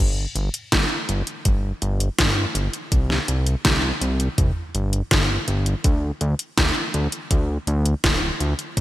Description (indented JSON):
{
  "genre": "synthwave",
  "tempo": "82 BPM",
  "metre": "4/4",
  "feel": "straight",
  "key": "unclear",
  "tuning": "A4 = 440 Hz",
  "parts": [
    { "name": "fat analog bass", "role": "bass", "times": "0.0-8.8 s", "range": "D1 to G2", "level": "-22 LUFS", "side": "equal", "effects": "sidechain pumping" },
    { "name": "pop drum kit", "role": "drums", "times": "0.4-8.8 s", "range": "hi-hat, snare drum, toms", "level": "-22 LUFS", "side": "equal", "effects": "overdrive, gated reverb" },
    { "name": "electronic kick drum", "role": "drums", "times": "0.7-8.8 s", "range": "none", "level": "-21 LUFS", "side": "equal", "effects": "overdrive" }
  ],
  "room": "light reverb",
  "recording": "bright 1980s-style digital production",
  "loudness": "-19 LUFS",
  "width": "side -15 dB against mid",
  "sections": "0.0-8.8 A section",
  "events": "none",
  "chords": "none"
}